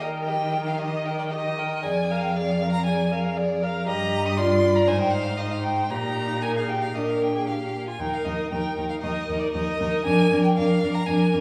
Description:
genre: quick classical-period movement for string quartet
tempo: 117 BPM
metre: 4/4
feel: rubato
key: Eb major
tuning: A4 = 440 Hz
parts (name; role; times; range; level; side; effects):
- clear violin; melody; 0.0-11.3 s; D5 to Eb6; -31 LUFS; equal; none
- rich violin; second line; 0.0-11.4 s; F4 to G5; -29 LUFS; equal; none
- rich viola; accompaniment; 0.0-11.4 s; D4 to Bb4; -32 LUFS; equal; none
- rich cello; bass; 0.0-11.4 s; Eb2 to Eb3; -29 LUFS; equal; none
room: wet recital hall reverb, RT60 1.4 s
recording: recorded in a church or concert hall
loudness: -24 LUFS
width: mono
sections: 0.0-11.4 A section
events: none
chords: 0.0 Eb; 1.8 Bb7/F; 3.9 Eb/G; 4.9 Ab; 5.9 Eb/Bb; 6.9 Bb; 8.0 Eb5; 10.1 Bb/F

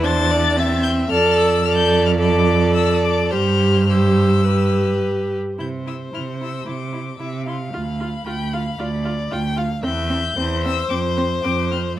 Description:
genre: quick classical-period movement for string quartet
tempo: 104-115 BPM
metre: 4/4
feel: rubato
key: C major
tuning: A4 = 440 Hz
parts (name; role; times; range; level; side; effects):
- clear violin; melody; 0.0-11.8 s; B5 to A6; -25 LUFS; left 8 dB; none
- rich violin; second line; 0.0-12.0 s; B4 to G5; -25 LUFS; left 3 dB; none
- rich viola; accompaniment; 0.0-11.8 s; C4 to A4; -22 LUFS; right 1 dB; none
- rich cello; bass; 0.0-11.9 s; D2 to C3; -20 LUFS; right 3 dB; none
room: moderate large studio reverb, RT60 1.3 s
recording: close, detailed microphones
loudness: -17 LUFS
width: side -13 dB against mid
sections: 0.0-5.6 A section; 5.6-12.0 B section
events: none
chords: 0.0 C/E; 1.1 Dm/F; 3.3 C/G; 5.6 C; 7.7 Bdim/D; 9.8 C/E; 10.9 Dm7/F

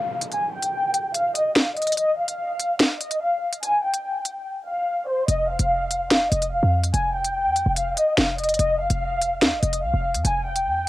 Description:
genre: hip hop, drill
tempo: 145 BPM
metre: 4/4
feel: half-time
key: F minor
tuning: A4 = 440 Hz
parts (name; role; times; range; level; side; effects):
- warm studio violin section; melody; 0.0-10.9 s; C5 to Ab5; -22 LUFS; left 1 dB; low-pass filter, cassette tape, tape echo
- downlifter; sound effects; 0.0-2.0 s; none; -40 LUFS; equal; none
- drill drum kit; drums; 0.2-10.7 s; finger snaps, hi-hat, snare drum; -22 LUFS; equal; none
- short 808-style bass; bass; 5.3-10.9 s; F1 to F2; -25 LUFS; equal; none
room: light reverb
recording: home recording on cassette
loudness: -20 LUFS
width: side -16 dB against mid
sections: 0.0-10.9 A section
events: break 0.0-5.3; filter sweep on violin section 0.0-10.9; drums muted 4.5-5.3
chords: 0.0 N.C.; 5.3 F7(no3); 8.6 F5

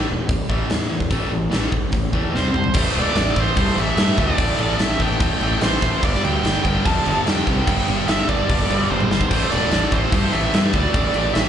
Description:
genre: hard rock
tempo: 146 BPM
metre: 4/4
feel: straight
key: A minor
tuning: A4 = 440 Hz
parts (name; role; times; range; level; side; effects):
- cranked stack guitar; riff; 0.0-11.5 s; G2 to C4; -27 LUFS; left 12 dB; overdrive, slapback echo
- distorted electric guitar; riff; 0.0-11.5 s; G2 to C4; -27 LUFS; right 10 dB; overdrive, slapback echo
- fuzz fingered electric bass; bass; 0.0-11.5 s; E1 to G2; -23 LUFS; equal; overdrive
- huge arena drum kit; drums; 0.3-11.5 s; crash cymbal, hi-hat, kick drum, snare drum, toms; -21 LUFS; equal; none
- biting lead guitar; melody; 2.4-11.5 s; C5 to A5; -24 LUFS; right 4 dB; overdrive, plate reverb, slapback echo
- scooped high-gain guitar; riff; 2.7-11.5 s; G2 to A3; -29 LUFS; equal; none
room: light reverb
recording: live gig heard through the venue's PA, club reverb, nothing above 10.9 kHz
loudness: -17 LUFS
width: side -9 dB against mid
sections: 0.0-2.8 A section; 2.8-11.5 B section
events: drum fill 2.3-2.8, 8.9-9.3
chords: 0.0 A5; 2.3 C5; 2.8 Am; 6.0 G5; 9.3 Am

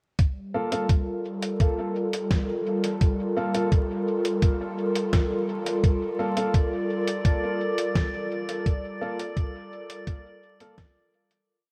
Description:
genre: ambient dub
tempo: 85 BPM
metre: 4/4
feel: straight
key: G minor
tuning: A4 = 440 Hz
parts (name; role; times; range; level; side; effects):
- airy breathy pad; sustained chords; 0.2-11.5 s; G3 to Bb4; -30 LUFS; equal; chorus
- electronic kick drum; drums; 0.2-10.9 s; none; -25 LUFS; equal; none
- lo-fi sampler-style drum kit; drums; 0.2-11.4 s; hi-hat, snare drum; -35 LUFS; equal; dub echo
- warm upright piano; stabs; 0.5-10.7 s; Bb3 to A4; -35 LUFS; equal; dub echo
- drifting glass-harmonics texture; texture; 6.3-11.5 s; D5; -37 LUFS; equal; chorus, built-in reverb
room: light reverb, digital ambience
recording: vinyl crackle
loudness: -26 LUFS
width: mono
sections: 0.2-11.5 groove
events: fade-out 7.7-11.5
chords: 0.2 Gm9

